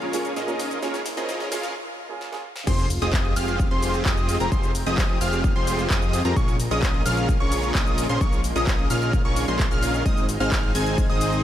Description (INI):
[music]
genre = EDM, festival progressive house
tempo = 130 BPM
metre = 4/4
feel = straight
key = F minor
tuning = A4 = 443 Hz
[part]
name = lush unison pad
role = sustained chords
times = 0.0-11.4 s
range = C3 to G5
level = -34 LUFS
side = left 1 dB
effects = chorus, sidechain pumping
[part]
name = dense compressed supersaw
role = riff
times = 0.0-11.4 s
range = C4 to Ab5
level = -27 LUFS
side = equal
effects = sidechain pumping, low-pass filter, digital delay
[part]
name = fat analog bass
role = bass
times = 0.0-11.4 s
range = F1 to F2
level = -27 LUFS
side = equal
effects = sidechain pumping
[part]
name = big-room dance drum kit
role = drums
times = 0.0-11.4 s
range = crash cymbal, handclaps, hi-hat, ride cymbal, shaker, snare drum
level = -31 LUFS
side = left 1 dB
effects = high-pass filter on snare, studio reverb, high-pass filter on hats, high-pass filter on perc, high-pass filter on cymbals
[part]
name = riser, swell and sub drop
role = sound effects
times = 0.0-4.5 s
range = none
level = -36 LUFS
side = equal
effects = none
[part]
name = felt-muted upright piano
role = accompaniment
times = 0.1-2.4 s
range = Bb3 to C5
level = -34 LUFS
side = right 4 dB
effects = sidechain pumping, digital delay
[part]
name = plucky unison lead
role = arpeggios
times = 2.7-11.4 s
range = Bb5 to Ab6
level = -29 LUFS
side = equal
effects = sidechain pumping, digital delay
[part]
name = electronic kick drum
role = drums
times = 2.7-11.1 s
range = none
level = -22 LUFS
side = equal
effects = studio reverb
[sound]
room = little or no reverb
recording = high-pass filter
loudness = -20 LUFS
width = side -11 dB against mid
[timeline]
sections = 0.0-2.7 A section; 2.7-11.4 B section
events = build-up 0.0-2.7; drum fill 0.0-1.7, 2.2-2.7; filter sweep on supersaw synth 0.0-2.7; break 1.7-2.7; swell 1.7-2.7; drop 2.7-11.4; impact 2.7-4.5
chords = 0.0 Bbm7; 2.7 Fmadd9; 6.4 Bbm7; 10.1 Ab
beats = 0.36 | 0.83 1.29 1.75 2.21 | 2.67 3.13 3.60 4.06 | 4.52 4.98 5.44 5.90 | 6.36 6.83 7.29 7.75 | 8.21 8.67 9.13 9.60 | 10.06 10.52 10.98